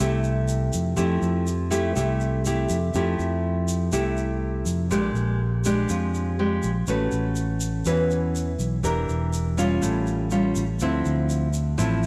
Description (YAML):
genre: bossa nova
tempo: 122 BPM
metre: 4/4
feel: straight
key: F major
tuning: A4 = 440 Hz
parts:
  - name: nylon-string guitar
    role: accompaniment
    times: 0.0-12.1 s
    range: A2 to B4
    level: -27 LUFS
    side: equal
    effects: none
  - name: fingered electric bass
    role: bass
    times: 0.0-12.1 s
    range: E1 to F2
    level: -28 LUFS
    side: equal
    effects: none
  - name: tube shaker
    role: percussion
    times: 0.2-12.1 s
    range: none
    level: -39 LUFS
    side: equal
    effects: none
room: moderate plate reverb, RT60 3.2 s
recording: none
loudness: -24 LUFS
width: mono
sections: 0.0-2.9 A section; 2.9-12.1 A section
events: none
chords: 0.0 Fmaj9; 4.9 Bb6; 6.9 A69; 8.8 Em7b5; 9.8 Aaug7; 10.8 Dm9